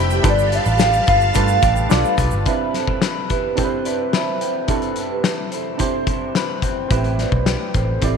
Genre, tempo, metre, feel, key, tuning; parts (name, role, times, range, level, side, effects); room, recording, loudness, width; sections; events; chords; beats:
indie pop, bedroom pop; 108 BPM; 4/4; straight; C major; A4 = 441 Hz
electric guitar through a small old amp; accompaniment; 0.0-8.2 s; A2 to B4; -26 LUFS; left 11 dB; wide subtle chorus, vibrato effect
warm upright piano; accompaniment; 0.0-8.2 s; C3 to D5; -25 LUFS; right 12 dB; cassette tape
string machine, full ensemble; sustained chords; 0.0-2.4 s; G4 to B5; -25 LUFS; equal; ensemble chorus
vintage muted picked electric bass; bass; 0.0-2.4, 6.9-8.2 s; F1 to G2; -20 LUFS; equal
egg shaker; percussion; 0.1-2.4 s; -36 LUFS; right 18 dB
loose indie drum kit; drums; 0.2-8.1 s; hi-hat, kick drum, snare drum; -22 LUFS; left 3 dB
hollow clarinet-like synth lead; melody; 0.3-2.1 s; D5 to F5; -19 LUFS; right 1 dB; wide subtle chorus, tape echo
vibraphone with medium mallets; second line; 2.5-8.2 s; G4 to E5; -26 LUFS; right 8 dB; lush chorus, tape echo
moderate echo chamber reverb, RT60 2.4 s; 1960s-style stereo with parts hard left and right; -16 LUFS; side -6 dB against mid
0.0-2.5 A section; 2.5-8.2 B section
0.2 G9; 2.5 Cmaj7; 6.9 Am7
| 0.24 0.80 1.35 1.91 | 2.46 3.01 3.57 4.12 | 4.68 5.24 5.79 6.35 | 6.91 7.46 8.02